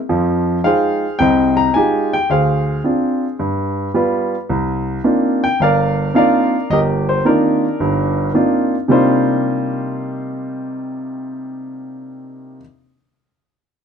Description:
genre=solo jazz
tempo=109 BPM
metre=4/4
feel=swing 69% on 8ths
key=C minor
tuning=A4 = 440 Hz
part: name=warm baby grand piano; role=solo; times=0.1-12.6 s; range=G1 to Bb5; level=-15 LUFS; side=equal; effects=none
room=moderate club reverb, RT60 0.8 s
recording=dark, warm production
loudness=-14 LUFS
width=side -7 dB against mid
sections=0.0-8.9 A section; 8.9-11.1 B section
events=none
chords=0.1 Fm9; 2.3 Dm7b5; 3.4 G7; 4.5 Cm11

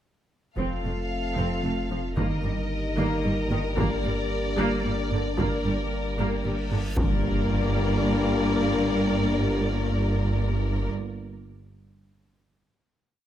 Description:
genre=cinematic, hybrid orchestral and electronic film score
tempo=75 BPM (dotted quarters)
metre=6/8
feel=straight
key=G minor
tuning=A4 = 440 Hz
part: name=warm symphonic violin section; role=melody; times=0.6-10.9 s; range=D5 to F5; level=-35 LUFS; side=left 4 dB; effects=none
part: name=rich symphonic violin section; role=second line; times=0.6-10.9 s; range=A4 to Bb4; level=-34 LUFS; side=left 2 dB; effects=none
part: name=warm symphonic viola section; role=accompaniment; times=0.6-10.9 s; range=D3 to C4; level=-33 LUFS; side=equal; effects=none
part: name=dark French horn section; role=sustained chords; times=0.6-10.9 s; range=Bb3 to F4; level=-32 LUFS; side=left 5 dB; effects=none
part: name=warm trombone section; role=sustained chords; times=0.6-10.9 s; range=F2 to A3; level=-35 LUFS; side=right 2 dB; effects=none
part: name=harp-like synth pluck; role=arpeggios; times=0.6-6.9 s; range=Eb3 to D4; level=-34 LUFS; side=right 3 dB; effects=chorus, tape echo
part: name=clear symphonic double bass section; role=bass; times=0.6-10.9 s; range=F1 to G1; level=-32 LUFS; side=right 2 dB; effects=none
part: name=warm sub bass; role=bass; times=0.6-10.9 s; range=F1 to G1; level=-32 LUFS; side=equal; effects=none
part: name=warm symphonic cello section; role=bass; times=0.6-10.9 s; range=F2 to G2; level=-30 LUFS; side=right 2 dB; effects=none
part: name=taiko ensemble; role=drums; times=0.6-8.0 s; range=none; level=-31 LUFS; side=equal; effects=none
part: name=reverse cymbal and impact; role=sound effects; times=6.6-8.6 s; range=none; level=-33 LUFS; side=equal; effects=none
room=light reverb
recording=none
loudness=-23 LUFS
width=side -11 dB against mid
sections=0.6-7.0 theme; 7.0-10.2 final chord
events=reverse cymbal 6.6-7.0; impact 7.0-8.6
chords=0.6 F; 2.2 Eb/G; 3.8 Gm

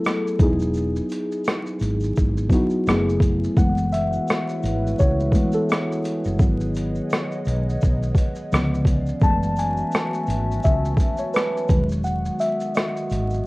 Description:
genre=lo-fi hip hop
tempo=85 BPM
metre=4/4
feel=swing 57% on 16ths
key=F# dorian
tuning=A4 = 439 Hz
part: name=muted felt-like synth keys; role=accompaniment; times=0.0-13.5 s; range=D3 to A5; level=-23 LUFS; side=equal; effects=chorus, cassette tape
part: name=tube shaker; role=percussion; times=0.0-13.4 s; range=none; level=-52 LUFS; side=right 2 dB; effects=none
part: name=boom bap sampler-style drum kit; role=drums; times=0.1-13.5 s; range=hi-hat, kick drum, rim click, shaker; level=-21 LUFS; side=equal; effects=overdrive
part: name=woody fretless electric bass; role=bass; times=0.4-13.4 s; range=E1 to C#2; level=-24 LUFS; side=equal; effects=none
part: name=warbly tape-like pad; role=sustained chords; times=3.9-13.5 s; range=D#3 to F#5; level=-31 LUFS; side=right 1 dB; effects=chorus, built-in reverb
room=moderate small room reverb, RT60 0.5 s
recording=worn, warbling old tape, cassette tape, vinyl crackle, warbly pitch drift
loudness=-19 LUFS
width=side -22 dB against mid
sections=0.0-3.6 A section; 3.6-13.5 A section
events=synth keys solo 3.6-13.5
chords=0.4 Emaj9; 2.9 F#m11; 6.4 C#9sus4/G#; 8.5 C#7b9; 9.2 F#m11; 11.7 Emaj9

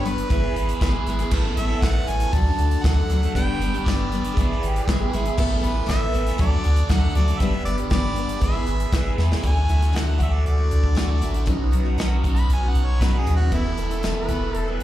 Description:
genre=folk rock and heartland rock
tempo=118 BPM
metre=4/4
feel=straight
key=E mixolydian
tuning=A4 = 440 Hz
part: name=clear harmonica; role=melody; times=0.0-14.0 s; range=E4 to B5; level=-30 LUFS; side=equal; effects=slapback echo
part: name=picked steel-string acoustic guitar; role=accompaniment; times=0.0-14.8 s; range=G2 to A4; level=-28 LUFS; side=left 3 dB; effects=slapback echo
part: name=reed electric piano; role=accompaniment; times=0.0-14.8 s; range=D4 to E5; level=-38 LUFS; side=right 5 dB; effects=none
part: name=biting overdriven guitar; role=riff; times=0.0-14.8 s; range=E2 to B4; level=-29 LUFS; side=right 2 dB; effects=phaser, slapback echo
part: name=pure sine sub bass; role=bass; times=0.0-14.8 s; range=E1 to E2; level=-21 LUFS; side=equal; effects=none
part: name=natural country drum kit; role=drums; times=0.1-14.8 s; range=crash cymbal, hi-hat, kick drum, snare drum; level=-25 LUFS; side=equal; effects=none
part: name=mellow harmonica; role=second line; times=4.7-5.5, 14.0-14.8 s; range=E4 to B4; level=-31 LUFS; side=right 1 dB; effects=slapback echo
room=little or no reverb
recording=live gig heard through the venue's PA, club reverb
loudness=-19 LUFS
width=side -13 dB against mid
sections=0.0-9.4 A section; 9.4-14.8 B section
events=drum fill 9.2; harmonica solo 9.4-14.8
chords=0.3 E/G#; 1.3 Asus2; 2.3 D; 3.4 G; 4.4 E/G#; 5.4 Asus2; 6.4 D; 7.4 G; 8.4 E/G#; 9.4 Dadd9; 11.5 Badd9; 13.5 Esus4

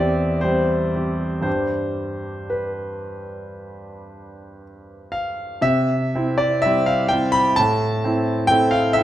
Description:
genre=classical, romantic nocturne for solo piano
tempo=56-66 BPM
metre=4/4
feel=rubato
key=C major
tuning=A4 = 437 Hz
part: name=clear concert grand piano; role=solo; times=0.0-9.0 s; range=E2 to B5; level=-19 LUFS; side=equal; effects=none
room=wet recital hall reverb, RT60 1.8 s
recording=none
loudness=-18 LUFS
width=side -12 dB against mid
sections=0.0-5.7 A section; 5.7-9.0 A section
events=none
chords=0.0 C/E; 1.5 G; 5.7 C; 7.6 Am

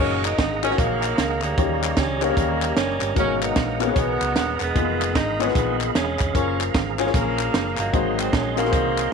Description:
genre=uptempo gospel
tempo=151 BPM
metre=4/4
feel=swing 62% on 8ths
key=F# major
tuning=A4 = 439 Hz
part: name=mellow saxophone section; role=melody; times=0.0-9.1 s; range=C#3 to D#4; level=-25 LUFS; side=right 2 dB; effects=none
part: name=warm grand piano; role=accompaniment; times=0.0-9.1 s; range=G#2 to D#5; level=-25 LUFS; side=left 13 dB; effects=none
part: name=tonewheel organ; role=sustained chords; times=0.0-9.1 s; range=G4 to B#5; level=-29 LUFS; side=right 14 dB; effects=fast rotary speaker, chorus vibrato
part: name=hollow-body short-scale fingered electric bass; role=bass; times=0.0-9.1 s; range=D#1 to D#2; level=-29 LUFS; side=right 1 dB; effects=none
part: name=crisp fusion drum kit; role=drums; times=0.2-9.0 s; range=hi-hat, kick drum, snare drum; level=-24 LUFS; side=right 2 dB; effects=none
part: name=group handclap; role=percussion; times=0.2-9.0 s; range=none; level=-31 LUFS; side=left 14 dB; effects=none
room=light reverb, studio reverb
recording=1960s-style stereo with parts hard left and right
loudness=-19 LUFS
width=side -5 dB against mid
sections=0.0-9.1 A section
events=none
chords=0.0 F#69; 1.6 D#7; 3.2 G#m9; 4.8 Fm7b5; 6.3 F#maj9; 7.9 G#7

